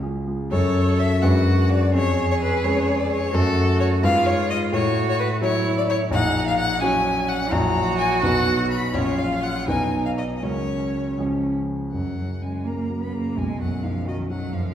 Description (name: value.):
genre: quick classical-period movement for piano trio.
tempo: 85 BPM (dotted quarters).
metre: 6/8.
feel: rubato.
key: F# minor, F# major from 6.1 s.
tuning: A4 = 438 Hz.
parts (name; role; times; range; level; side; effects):
warm concert grand piano; accompaniment; 0.0-14.7 s; A#1 to C#5; -22 LUFS; equal; none.
rich violin; melody; 0.5-14.7 s; A4 to B5; -25 LUFS; left 4 dB; none.
rich cello; second line; 0.5-14.7 s; D#3 to A4; -27 LUFS; right 4 dB; none.
room: wet recital hall reverb, RT60 1.7 s.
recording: heard from further back in the room.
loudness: -19 LUFS.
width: side -10 dB against mid.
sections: 0.5-11.9 A section; 11.9-14.7 B section.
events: none.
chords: 0.0 C#; 0.5 F#m; 1.2 G#m7b5/F#; 1.9 C#7/E#; 3.3 F#m; 4.0 Fdim/Ab; 4.7 F#m/A; 6.1 F#/A#; 7.5 F#7/A#; 8.2 B; 8.9 F#/A#; 9.7 G#m7/B; 10.4 F#/C#; 11.2 C#; 11.9 F#; 13.4 B.